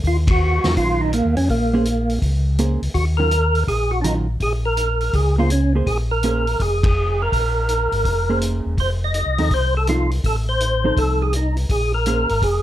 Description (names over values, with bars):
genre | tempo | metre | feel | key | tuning
soul jazz organ trio | 165 BPM | 4/4 | swing 65% on 8ths | Bb minor | A4 = 438 Hz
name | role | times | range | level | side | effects
mellow tonewheel organ | bass | 0.0-12.6 s | E1 to F2 | -20 LUFS | equal | chorus vibrato, slow rotary speaker
vintage drum kit | drums | 0.0-12.5 s | hi-hat, kick drum, ride cymbal, snare drum | -25 LUFS | equal | none
percussive tonewheel organ | melody | 0.1-12.6 s | Bb3 to Eb5 | -21 LUFS | equal | slow rotary speaker, overdrive, chorus vibrato
hollow-body jazz guitar | accompaniment | 0.6-12.3 s | Eb3 to C5 | -23 LUFS | right 3 dB | none
room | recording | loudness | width
light reverb | dark, warm production | -17 LUFS | side -13 dB against mid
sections
0.0-12.6 A section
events
band accent 0.2, 6.8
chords
0.0 Ebm9; 1.5 Bbm9; 3.0 Ebm9; 4.4 Bbm9; 8.8 F7; 11.7 Bbm9